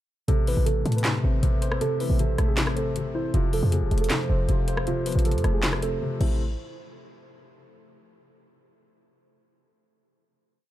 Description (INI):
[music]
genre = hip hop, trap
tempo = 157 BPM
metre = 4/4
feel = half-time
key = A minor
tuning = A4 = 440 Hz
[part]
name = muted felt-like synth keys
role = melody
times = 0.3-6.4 s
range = E4 to B4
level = -31 LUFS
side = right 4 dB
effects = chorus, ping-pong delay
[part]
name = dark baby grand piano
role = accompaniment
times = 0.3-6.4 s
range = C3 to C5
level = -29 LUFS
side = left 4 dB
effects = none
[part]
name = dark analog pad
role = sustained chords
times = 1.2-6.4 s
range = F3 to E5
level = -36 LUFS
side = right 1 dB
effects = chorus, phaser
[part]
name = short 808-style bass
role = bass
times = 0.3-6.6 s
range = E1 to A2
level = -24 LUFS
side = equal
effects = none
[part]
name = trap drum kit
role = drums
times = 0.3-6.3 s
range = crash cymbal, handclaps, hi-hat, rim click, snare drum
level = -31 LUFS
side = equal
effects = none
[sound]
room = digital ambience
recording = dark, warm production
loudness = -22 LUFS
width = side -14 dB against mid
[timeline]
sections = 0.3-6.4 hook; 6.4-7.9 final hit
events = silent gap 6.0-6.4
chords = 0.3 Am; 3.3 F; 6.2 Am; 6.4 N.C.